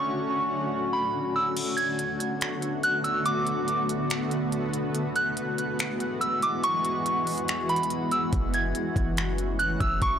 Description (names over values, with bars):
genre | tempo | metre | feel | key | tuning
hip hop, atmospheric cloud-rap | 142 BPM | 4/4 | half-time | unclear | A4 = 440 Hz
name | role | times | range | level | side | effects
soft synth bell | melody | 0.0-10.2 s | B5 to G#6 | -27 LUFS | right 1 dB | chorus, low-pass filter, digital delay
granular cloud pad | sustained chords | 0.0-10.2 s | D3 to F#4 | -28 LUFS | left 1 dB | built-in reverb, sidechain pumping
trap drum kit | drums | 1.6-10.1 s | crash cymbal, finger snaps, hi-hat, kick drum | -31 LUFS | equal | soft clipping on snare
warm 808-style bass | bass | 8.3-10.2 s | F#1 | -30 LUFS | equal | none
room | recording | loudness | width
moderate lush hall reverb, RT60 1.8 s | blown-out, overdriven recording, overdrive | -24 LUFS | side -9 dB against mid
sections
0.0-1.6 A section; 1.6-10.2 B section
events
kick muted 1.6-8.3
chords
0.0 Dmaj7; 1.6 Bm7; 4.9 Eadd9; 8.3 F#m7